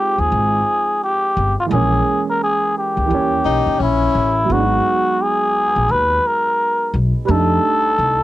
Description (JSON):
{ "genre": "hip hop, jazz-hop", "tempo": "86 BPM", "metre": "4/4", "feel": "swing 62% on 16ths", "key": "G# minor", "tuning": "A4 = 440 Hz", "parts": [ { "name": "trumpet with cup mute", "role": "melody", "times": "0.0-8.2 s", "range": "E4 to B4", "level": "-16 LUFS", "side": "left 1 dB", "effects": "cassette tape" }, { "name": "dark upright piano", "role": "accompaniment", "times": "0.0-8.2 s", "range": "E3 to D#4", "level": "-23 LUFS", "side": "right 6 dB", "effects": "cassette tape" }, { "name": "upright bass", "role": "bass", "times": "0.2-8.2 s", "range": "G1 to F2", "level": "-19 LUFS", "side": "left 1 dB", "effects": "none" }, { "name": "breathy tenor saxophone", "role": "second line", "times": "3.5-4.5 s", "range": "C#4 to D#4", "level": "-19 LUFS", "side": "left 9 dB", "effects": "cassette tape" } ], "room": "light reverb", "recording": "home recording on cassette", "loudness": "-14 LUFS", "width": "side -15 dB against mid", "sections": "0.0-4.5 A section; 4.5-8.2 A section", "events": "none", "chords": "0.0 C#maj7 (rootless); 1.7 A#m7b5; 3.1 D#7b9; 4.5 G#m9; 7.3 F13", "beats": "0.31 1.01 | 1.71 2.40 3.10 3.80 | 4.50 5.19 5.89 6.59 | 7.29 7.98" }